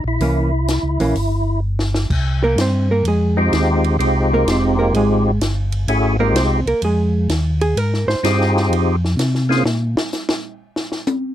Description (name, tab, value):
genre	soul jazz organ trio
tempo	127 BPM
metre	4/4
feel	swing 66% on 8ths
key	F minor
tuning	A4 = 439 Hz
part	percussive tonewheel organ	melody	0.0-9.6 s	Ab3 to Ab4	-18 LUFS	equal	slow rotary speaker, overdrive, chorus vibrato
part	mellow tonewheel organ	bass	0.0-10.0 s	F1 to C3	-18 LUFS	equal	chorus vibrato, slow rotary speaker
part	hollow-body jazz guitar	accompaniment	0.2-8.5 s	E3 to C5	-19 LUFS	right 2 dB	none
part	compact cocktail drum kit	drums	0.2-11.2 s	crash cymbal, hi-hat, kick drum, ride cymbal, snare drum, toms	-24 LUFS	left 1 dB	none
room	little or no reverb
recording	close, detailed microphones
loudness	-15 LUFS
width	side -12 dB against mid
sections	0.0-2.1 A section; 2.1-11.3 B section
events	drum fill 1.6-2.1; hollow-body jazz guitar solo 2.1-11.3; drum solo 9.7-11.3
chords	0.2 C7b9; 2.1 Fm7; 9.7 N.C.